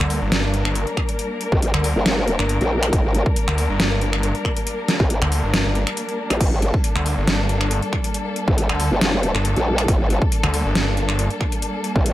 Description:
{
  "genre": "heavy wobble dubstep",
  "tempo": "138 BPM",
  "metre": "4/4",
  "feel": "swing 53% on 16ths, half-time",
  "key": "G minor",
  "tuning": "A4 = 441 Hz",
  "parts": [
    { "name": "warm studio string section", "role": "sustained chords", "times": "0.0-12.1 s", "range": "G3 to Bb4", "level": "-25 LUFS", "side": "left 1 dB", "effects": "sidechain pumping, low-pass filter" },
    { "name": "snarling distorted saw bass", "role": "bass", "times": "0.0-11.3 s", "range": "G1 to D2", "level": "-20 LUFS", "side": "equal", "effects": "distortion, overdrive" },
    { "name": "dubstep drum kit", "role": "drums", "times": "0.0-12.1 s", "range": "crash cymbal, finger snaps, hi-hat, snare drum", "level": "-23 LUFS", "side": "equal", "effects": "overdrive" },
    { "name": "electronic kick drum", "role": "drums", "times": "1.0-12.0 s", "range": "none", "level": "-20 LUFS", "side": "equal", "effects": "none" },
    { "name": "growl bass", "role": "bass", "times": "1.5-12.1 s", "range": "G1 to Bb1", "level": "-20 LUFS", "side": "equal", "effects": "chorus, overdrive" }
  ],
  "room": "light reverb",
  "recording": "none",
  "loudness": "-18 LUFS",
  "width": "side -14 dB against mid",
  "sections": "0.0-12.1 A section",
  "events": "break 6.0-6.4",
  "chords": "0.0 Gmadd9"
}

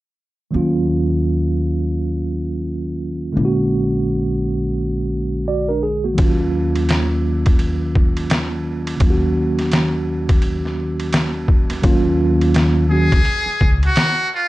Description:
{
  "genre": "hip hop, jazz-hop",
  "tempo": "85 BPM",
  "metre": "4/4",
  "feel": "swing 63% on 16ths",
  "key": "Eb minor",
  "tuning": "A4 = 444 Hz",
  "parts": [
    { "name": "mellow tine electric piano", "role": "accompaniment", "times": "0.5-13.2 s", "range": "D3 to D5", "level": "-19 LUFS", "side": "right 1 dB", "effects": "medium stereo tremolo, plate reverb" },
    { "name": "upright bass", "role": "bass", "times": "0.5-13.9 s", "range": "Bb1 to Eb2", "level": "-22 LUFS", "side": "equal", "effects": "none" },
    { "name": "trip hop sampler-style drum kit", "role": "drums", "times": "6.2-14.2 s", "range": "hi-hat, kick drum, ride cymbal, snare drum", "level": "-18 LUFS", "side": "equal", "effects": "overdrive, vintage 12-bit sampler grit" },
    { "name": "trumpet with metal mute", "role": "melody", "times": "12.9-14.5 s", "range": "F4 to Ab4", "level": "-18 LUFS", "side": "equal", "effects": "slapback echo" }
  ],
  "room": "moderate studio ambience, RT60 0.5 s",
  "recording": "dark, warm production",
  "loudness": "-16 LUFS",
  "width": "side -17 dB against mid",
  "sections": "0.5-11.8 A section; 11.8-14.5 B section",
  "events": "none",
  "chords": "0.5 Ebm9; 3.4 Bb7alt; 6.2 Ebm9"
}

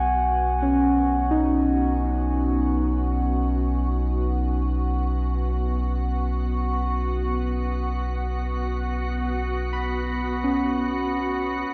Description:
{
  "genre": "ambient",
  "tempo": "free time",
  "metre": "none",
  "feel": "none",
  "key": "unclear",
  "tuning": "A4 = 440 Hz",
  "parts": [
    { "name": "muted felt-like synth keys", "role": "arpeggios", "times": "0.0-11.7 s", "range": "C#4 to B5", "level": "-28 LUFS", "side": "equal", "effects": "chorus, dub echo" },
    { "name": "warm sub bass", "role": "bass", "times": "0.0-11.7 s", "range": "B1", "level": "-28 LUFS", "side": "equal", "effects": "none" },
    { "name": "organ-like drone", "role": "drone", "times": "0.0-11.7 s", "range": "B3 to F#4", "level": "-31 LUFS", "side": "equal", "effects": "ensemble chorus, built-in reverb" }
  ],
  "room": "moderate plate reverb, RT60 2.7 s",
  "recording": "echo-heavy mix",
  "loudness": "-24 LUFS",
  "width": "mono",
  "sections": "0.0-11.7 A section",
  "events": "none",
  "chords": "0.0 G#m/B"
}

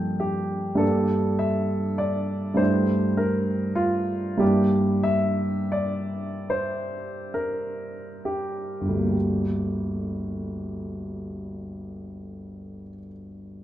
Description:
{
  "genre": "classical, impressionist solo piano",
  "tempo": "21-34 BPM (dotted quarters)",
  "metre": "6/8",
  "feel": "rubato",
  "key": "G dorian",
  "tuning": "A4 = 440 Hz",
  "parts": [
    { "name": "warm baby grand piano", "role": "solo", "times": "0.0-13.6 s", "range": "G1 to G5", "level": "-24 LUFS", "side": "equal", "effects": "none" }
  ],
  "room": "moderate recital hall reverb, RT60 1.4 s",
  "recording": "dark, warm production",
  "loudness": "-23 LUFS",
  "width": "side -12 dB against mid",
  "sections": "0.0-9.1 A section; 9.1-13.6 B section",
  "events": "slowing down 0.0-9.1",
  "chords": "0.0 Gm9; 0.8 Gm; 2.6 Gm13; 4.4 Gm6; 9.1 Gm"
}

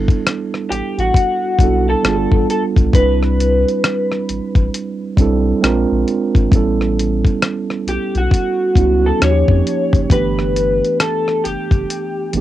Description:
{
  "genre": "R&B, neo-soul",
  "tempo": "67 BPM",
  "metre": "4/4",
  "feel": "swing 63% on 16ths",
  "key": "G major",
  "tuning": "A4 = 440 Hz",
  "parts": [
    { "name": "mellow tine electric piano", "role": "accompaniment", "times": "0.0-12.4 s", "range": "E3 to B4", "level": "-19 LUFS", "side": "right 6 dB", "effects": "none" },
    { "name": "round analog bass", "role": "bass", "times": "0.0-12.4 s", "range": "F#1 to F2", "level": "-18 LUFS", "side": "left 1 dB", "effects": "tube saturation" },
    { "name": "dusty soul sampler-style drum kit", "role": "drums", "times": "0.1-12.4 s", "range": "hi-hat, kick drum, rim click", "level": "-15 LUFS", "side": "left 1 dB", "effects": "none" },
    { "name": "electric guitar through a small old amp", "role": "melody", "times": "0.7-12.3 s", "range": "F#4 to Db5", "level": "-18 LUFS", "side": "left 2 dB", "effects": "analog chorus, cassette tape" }
  ],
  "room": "light reverb",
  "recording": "home recording on cassette",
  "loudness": "-13 LUFS",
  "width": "side -13 dB against mid",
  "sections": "0.0-12.4 A section",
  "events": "drum fill 11.9-12.4",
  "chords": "0.0 G6; 2.0 G9; 2.9 Cmaj9; 5.6 Bb9; 6.5 A7; 9.2 Eb9; 10.1 G6"
}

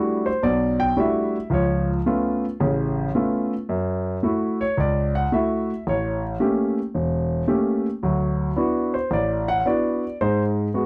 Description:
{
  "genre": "jazz",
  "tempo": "111 BPM",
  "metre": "4/4",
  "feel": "swing 67% on 8ths",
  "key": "D major",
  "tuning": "A4 = 440 Hz",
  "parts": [
    { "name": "warm concert grand piano", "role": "solo", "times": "0.0-10.9 s", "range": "E1 to G5", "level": "-23 LUFS", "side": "equal", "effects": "none" }
  ],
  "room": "little or no reverb",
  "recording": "dry, close 1970s-style studio recording",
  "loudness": "-23 LUFS",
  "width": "mono",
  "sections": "0.0-10.9 A section",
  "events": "none",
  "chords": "0.0 Em11; 1.5 C#aug7; 3.7 F#m7; 5.8 A7b9; 8.0 D69; 10.2 G#7"
}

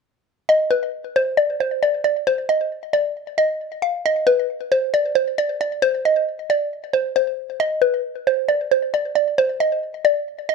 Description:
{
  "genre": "hip hop",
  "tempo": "135 BPM",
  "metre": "4/4",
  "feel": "half-time",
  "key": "C harmonic minor",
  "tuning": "A4 = 439 Hz",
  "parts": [
    { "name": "mallet-like synth pluck", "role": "melody", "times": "0.5-10.5 s", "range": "B4 to F5", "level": "-18 LUFS", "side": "equal", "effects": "chorus, phaser, ping-pong delay" }
  ],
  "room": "moderate studio reverb, RT60 0.6 s",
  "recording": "dark, warm production",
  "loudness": "-18 LUFS",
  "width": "side -5 dB against mid",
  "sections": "0.5-10.5 A section",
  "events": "none",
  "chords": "none"
}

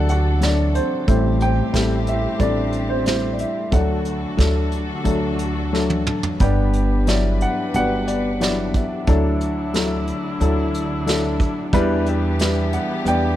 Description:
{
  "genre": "acoustic folk-pop ballad",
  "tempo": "90 BPM",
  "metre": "4/4",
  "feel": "straight",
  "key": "G major",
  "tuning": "A4 = 440 Hz",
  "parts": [
    { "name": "dark upright piano", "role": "melody", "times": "0.0-13.4 s", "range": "G1 to G5", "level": "-21 LUFS", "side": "left 1 dB", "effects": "none" },
    { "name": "warm studio string section", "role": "sustained chords", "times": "0.0-13.4 s", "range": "D3 to B4", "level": "-30 LUFS", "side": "left 1 dB", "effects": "none" },
    { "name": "upright bass", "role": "bass", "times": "0.0-13.4 s", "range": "G1 to E2", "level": "-21 LUFS", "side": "equal", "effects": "none" },
    { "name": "vintage brush drum kit", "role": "drums", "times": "0.1-13.2 s", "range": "hi-hat, kick drum, snare drum, toms", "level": "-23 LUFS", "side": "right 1 dB", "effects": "none" }
  ],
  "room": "little or no reverb",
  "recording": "close, detailed microphones",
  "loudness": "-18 LUFS",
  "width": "side -13 dB against mid",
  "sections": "0.0-6.4 A section; 6.4-13.4 B section",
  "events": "drum fill 5.7-6.4",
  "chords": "0.0 D; 1.1 Am7; 3.7 D; 6.4 Gmaj7; 9.1 Dadd9; 11.7 Em7"
}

